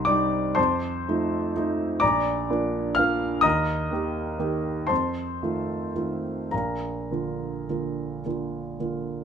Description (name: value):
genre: classical, romantic nocturne for solo piano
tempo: 34-43 BPM (dotted quarters)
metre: 12/8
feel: rubato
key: Bb major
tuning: A4 = 439 Hz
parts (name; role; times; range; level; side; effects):
- warm grand piano; solo; 0.0-9.2 s; Bb1 to F6; -24 LUFS; equal; none
room: light reverb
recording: close, detailed microphones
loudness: -24 LUFS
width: side -7 dB against mid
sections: 0.0-9.2 A section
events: none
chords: 0.0 Cm; 0.6 F7; 2.0 Bb; 3.4 Eb; 4.9 F7; 6.5 Bb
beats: 0.57 2.02 | 3.44 4.90 6.52 8.25